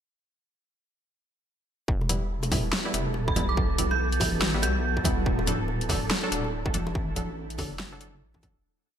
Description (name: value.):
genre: deep dubstep.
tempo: 142 BPM.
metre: 4/4.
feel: swing 60% on 16ths, half-time.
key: E minor.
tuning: A4 = 439 Hz.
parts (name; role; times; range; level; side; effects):
bowed-like drone; sustained chords; 3.1-8.6 s; D3 to F#4; -36 LUFS; equal; built-in reverb.
deep soft wobble bass; bass; 1.9-8.6 s; D1 to B1; -30 LUFS; equal; chorus.
electronic kick drum; drums; 1.9-8.5 s; none; -30 LUFS; equal; distortion.
wind-like tuned noise texture; texture; 2.4-8.7 s; A4; -37 LUFS; right 6 dB; built-in reverb.
bongos and congas; percussion; 2.0-8.5 s; none; -35 LUFS; right 2 dB; none.
filtered dub chord stab; stabs; 2.1-8.6 s; F#3 to A4; -34 LUFS; left 1 dB; chorus, dub echo.
dubstep drum kit; drums; 2.1-8.5 s; hi-hat, snare drum; -30 LUFS; left 1 dB; gated reverb.
dark detuned synth bell; melody; 3.3-5.0 s; B5 to G6; -33 LUFS; right 5 dB; chorus, tremolo, dub echo.
room: light reverb.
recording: bright 1980s-style digital production.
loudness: -24 LUFS.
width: side -9 dB against mid.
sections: 1.9-8.6 drop.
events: drop 1.9-8.6; fade-out 6.4-8.6.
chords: 1.9 Em; 5.3 D.